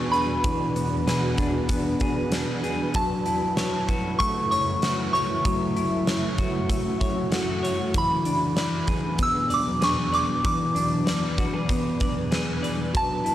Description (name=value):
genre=dream pop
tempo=96 BPM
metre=4/4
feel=straight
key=unclear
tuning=A4 = 438 Hz
part: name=soft synth bell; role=melody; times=0.0-13.3 s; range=A5 to E6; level=-27 LUFS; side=right 1 dB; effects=chorus, analog delay
part: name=granular cloud pad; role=sustained chords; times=0.0-13.3 s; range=E2 to B4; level=-28 LUFS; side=right 1 dB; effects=built-in reverb
part: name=clean electric guitar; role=arpeggios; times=0.0-13.3 s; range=E3 to D5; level=-28 LUFS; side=left 2 dB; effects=lush chorus, analog delay
part: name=huge arena drum kit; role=drums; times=0.1-13.3 s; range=hi-hat, kick drum, snare drum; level=-28 LUFS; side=equal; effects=none
room=light reverb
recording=cassette tape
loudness=-22 LUFS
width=side -12 dB against mid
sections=0.0-13.3 A section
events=none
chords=0.0 E7; 2.9 F#m7; 7.9 E7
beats=| 0.45 1.07 1.70 2.32 | 2.95 3.57 4.20 4.82 | 5.45 6.07 6.70 7.32 | 7.95 8.57 9.20 9.82 | 10.45 11.07 11.70 12.32 | 12.95